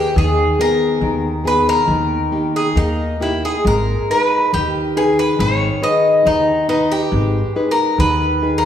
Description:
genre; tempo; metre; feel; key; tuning
fado-style ballad; 69 BPM; 2/4; rubato; G# harmonic minor; A4 = 440 Hz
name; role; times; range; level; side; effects
Irish bouzouki; melody; 0.0-8.7 s; D#4 to D#5; -17 LUFS; equal; none
nylon-string guitar; accompaniment; 0.0-8.7 s; D#3 to B4; -19 LUFS; left 1 dB; none
upright bass; bass; 0.2-8.5 s; G#1 to D#2; -21 LUFS; equal; none
room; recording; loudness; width
moderate scoring stage reverb, RT60 1.8 s; studio reverb; -14 LUFS; side -9 dB against mid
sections
0.0-8.7 A section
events
none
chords
0.2 G#m/D#; 1.9 D#; 3.6 G#m

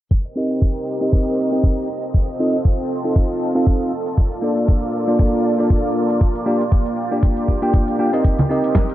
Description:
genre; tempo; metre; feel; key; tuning
nu-disco, nu disco; 118 BPM; 4/4; swing 56% on 16ths; C dorian; A4 = 441 Hz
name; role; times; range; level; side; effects
lush unison pad; sustained chords; 0.4-8.9 s; Bb3 to Eb5; -24 LUFS; right 1 dB; chorus, phaser, sidechain pumping
dusty soul sampler-style drum kit; drums; 0.1-8.9 s; hi-hat, snare drum; -27 LUFS; right 1 dB; small room ambience
electronic kick drum; drums; 0.1-8.9 s; none; -16 LUFS; equal; small room ambience
bell-like tine electric piano; accompaniment; 0.4-8.9 s; Bb3 to G5; -20 LUFS; equal; sidechain pumping, low-pass filter, tape echo
congas; percussion; 8.4-8.5 s; none; -19 LUFS; equal; none
room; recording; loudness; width
light reverb; dry, gritty hardware recording, low-pass filter; -16 LUFS; side -14 dB against mid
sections
0.1-8.9 A section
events
filter sweep on tine electric piano 0.1-8.9; filter sweep 0.1-8.9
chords
0.1 Cm7; 1.9 F7; 3.9 Bbmaj7; 6.2 Gm7; 8.2 Cm7

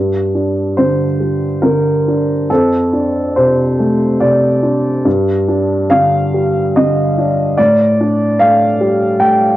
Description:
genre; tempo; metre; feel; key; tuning
neoclassical minimalist piano; 69-75 BPM; 3/4; rubato; G minor; A4 = 436 Hz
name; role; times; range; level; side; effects
warm upright piano; solo; 0.0-9.6 s; F2 to G5; -11 LUFS; equal; none
room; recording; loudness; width
moderate studio reverb, RT60 0.6 s; home recording on cassette; -11 LUFS; side -15 dB against mid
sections
0.0-9.6 A section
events
none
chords
0.0 Gm; 2.5 Dm7/F; 5.1 G5; 7.6 Dsus4/A

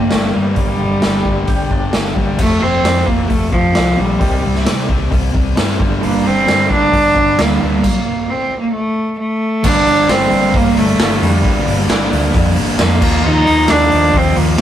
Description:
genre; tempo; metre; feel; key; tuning
quiet-loud alternative rock; 133 BPM; 4/4; straight; G minor; A4 = 441 Hz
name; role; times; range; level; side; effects
rich cello; melody; 0.0-14.6 s; F3 to Eb4; -15 LUFS; right 1 dB; none
electric guitar through a small old amp; arpeggios; 0.0-7.8 s; F2 to G4; -25 LUFS; right 1 dB; tremolo
thick fuzz guitar; riff; 0.0-14.6 s; F2 to Eb4; -21 LUFS; left 5 dB; distortion
growling fingered electric bass; bass; 0.0-14.6 s; F1 to C3; -19 LUFS; equal; overdrive
raw garage drum kit; drums; 0.1-14.6 s; crash cymbal, hi-hat, kick drum, snare drum; -17 LUFS; equal; none
distorted electric guitar; riff; 6.0-14.6 s; G2 to Eb4; -19 LUFS; right 4 dB; distortion
room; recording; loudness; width
light reverb; rough rehearsal-room recording; -12 LUFS; side -11 dB against mid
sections
0.0-2.4 A section; 2.4-9.6 B section; 9.6-14.6 C section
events
stop 7.8-9.6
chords
0.0 Gm; 2.4 F5; 4.2 Cm; 5.8 G5; 7.8 N.C.; 9.6 Gm; 13.0 Ebsus2

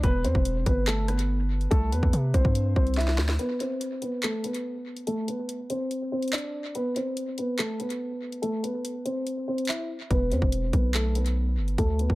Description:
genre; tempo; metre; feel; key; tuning
hip hop, drill; 143 BPM; 4/4; half-time; E minor; A4 = 441 Hz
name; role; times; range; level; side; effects
dark concert grand piano; melody; 0.0-12.2 s; A3 to E5; -29 LUFS; equal; low-pass filter, tape echo
long sustained 808-style bass; bass; 0.0-3.4, 10.1-12.2 s; E1 to C3; -25 LUFS; equal; none
drill drum kit; drums; 0.0-12.2 s; handclaps, hi-hat, kick drum, rim click, snare drum; -27 LUFS; equal; none
room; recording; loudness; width
little or no reverb; echo-heavy mix; -24 LUFS; side -19 dB against mid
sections
0.0-3.4 A section; 3.4-12.2 B section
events
drum fill 3.0-3.4; break 3.4-10.1; filter sweep on grand piano 3.4-12.2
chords
0.0 Em; 1.7 C; 3.4 Amadd9; 5.1 D5; 6.7 Amadd9; 8.4 C; 10.1 E5

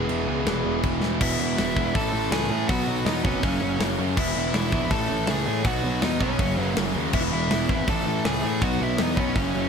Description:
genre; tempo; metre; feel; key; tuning
punk rock; 162 BPM; 4/4; straight; unclear; A4 = 439 Hz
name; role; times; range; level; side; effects
dark smooth lead guitar; melody; 0.0-9.7 s; C#4 to A5; -30 LUFS; right 1 dB; overdrive
distorted electric guitar; riff; 0.0-9.7 s; E2 to B3; -29 LUFS; left 16 dB; distortion
high-gain distorted guitar; riff; 0.0-9.7 s; E2 to B3; -31 LUFS; right 1 dB; distortion
sludgy distorted guitar; riff; 0.0-9.7 s; F#2 to E4; -29 LUFS; right 14 dB; overdrive
fuzz picked electric bass; bass; 0.0-9.7 s; E1 to A2; -29 LUFS; equal; overdrive
tight metal drum kit; drums; 0.1-9.4 s; crash cymbal, hi-hat, kick drum, snare drum; -27 LUFS; equal; none
room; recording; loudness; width
little or no reverb; none; -21 LUFS; side -6 dB against mid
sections
0.0-1.2 A section; 1.2-9.7 B section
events
half time 0.0-1.2; drum fill 1.0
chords
0.0 E; 2.0 A; 2.7 B; 3.4 F#; 4.2 E; 4.9 A; 5.7 B; 6.4 F#; 7.1 E; 7.9 A; 8.6 B

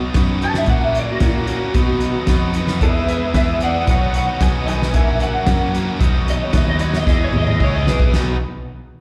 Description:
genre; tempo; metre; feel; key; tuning
indie rock; 113 BPM; 4/4; straight; B major; A4 = 442 Hz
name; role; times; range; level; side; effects
combo organ; sustained chords; 0.0-8.4 s; B2 to C#5; -36 LUFS; equal; none
crunchy overdriven guitar; riff; 0.0-8.4 s; E3 to G#4; -28 LUFS; equal; slapback echo
overdriven electric guitar; riff; 0.0-8.3 s; E2 to B4; -29 LUFS; equal; lush chorus, slapback echo
picked electric bass; bass; 0.0-8.4 s; A#1 to B2; -22 LUFS; equal; none
loose indie drum kit; drums; 0.1-8.3 s; hi-hat, kick drum, snare drum, splash cymbal, toms; -22 LUFS; equal; none
electric guitar through a small old amp; melody; 0.4-8.1 s; F#4 to A5; -25 LUFS; equal; ensemble chorus, slapback echo
room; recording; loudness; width
small room ambience; live gig heard through the venue's PA, recital hall reverb; -17 LUFS; mono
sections
0.0-8.1 A section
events
clean electric guitar solo 0.0-8.1; drum fill 7.1-8.1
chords
0.0 Badd9; 0.7 F#/A#; 1.8 Badd9; 2.8 E; 3.9 Badd9; 4.9 F#/A#; 6.0 Badd9; 7.1 E; 8.1 Badd9

